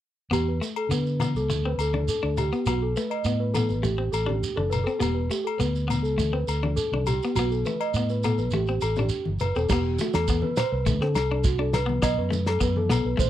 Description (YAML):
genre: highlife guitar band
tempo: 102 BPM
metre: 4/4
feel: straight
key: E minor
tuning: A4 = 435 Hz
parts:
  - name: semi-hollow electric guitar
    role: accompaniment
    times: 0.3-13.3 s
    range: A3 to D4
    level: -30 LUFS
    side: left 5 dB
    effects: none
  - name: large celesta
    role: arpeggios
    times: 0.3-13.3 s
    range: F#4 to D#5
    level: -28 LUFS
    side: right 1 dB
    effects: slapback echo
  - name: fingered electric bass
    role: bass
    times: 0.3-13.3 s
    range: E1 to D3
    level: -27 LUFS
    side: right 1 dB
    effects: none
  - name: agogo bells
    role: percussion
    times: 0.3-13.1 s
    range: none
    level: -34 LUFS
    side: left 14 dB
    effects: none
  - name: shekere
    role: percussion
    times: 0.3-13.3 s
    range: none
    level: -34 LUFS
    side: right 5 dB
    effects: none
  - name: congas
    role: percussion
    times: 1.2-13.3 s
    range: none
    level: -31 LUFS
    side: left 3 dB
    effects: none
  - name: damped 70s drum kit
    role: drums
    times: 9.7-13.3 s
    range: crash cymbal, kick drum, snare drum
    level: -27 LUFS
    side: equal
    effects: none
room: studio ambience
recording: dry, close 1970s-style studio recording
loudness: -23 LUFS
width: side -12 dB against mid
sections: 0.3-9.7 A section; 9.7-13.3 B section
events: none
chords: 0.3 Em; 1.5 D5; 2.7 B; 3.8 Am; 5.0 Em; 6.2 D5; 7.4 B; 8.5 Am; 9.7 Em; 10.9 D; 12.0 B5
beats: | 0.33 0.91 1.50 2.08 | 2.67 3.26 3.84 4.43 | 5.02 5.60 6.19 6.77 | 7.36 7.94 8.53 9.11 | 9.70 10.28 10.86 11.44 | 12.03 12.61 13.19